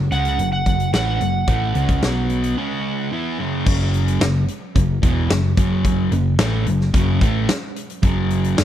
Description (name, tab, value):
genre	classic rock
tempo	110 BPM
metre	4/4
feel	straight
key	unclear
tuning	A4 = 440 Hz
part	distorted electric guitar	riff	0.0-8.6 s	E2 to E4	-24 LUFS	left 9 dB	distortion
part	sludgy distorted guitar	riff	0.0-8.6 s	E2 to E4	-23 LUFS	right 7 dB	overdrive
part	hollow-body short-scale picked electric bass	bass	0.0-8.6 s	E1 to C#2	-21 LUFS	equal	none
part	overdriven slide guitar	melody	0.1-3.1 s	F#5	-24 LUFS	right 6 dB	slapback echo
part	huge arena drum kit	drums	0.1-8.6 s	crash cymbal, hi-hat, kick drum, snare drum	-22 LUFS	equal	none
room	small room ambience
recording	dry, close 1970s-style studio recording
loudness	-17 LUFS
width	side -11 dB against mid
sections	0.0-3.7 A section; 3.7-8.6 B section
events	break 2.6-3.7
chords	0.0 F#5; 2.0 B5; 2.6 C#5; 3.1 F#5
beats	0.39 0.94 | 1.48 2.03 2.57 3.12 | 3.67 4.21 4.76 5.30 | 5.85 6.40 6.94 7.49 | 8.03 8.58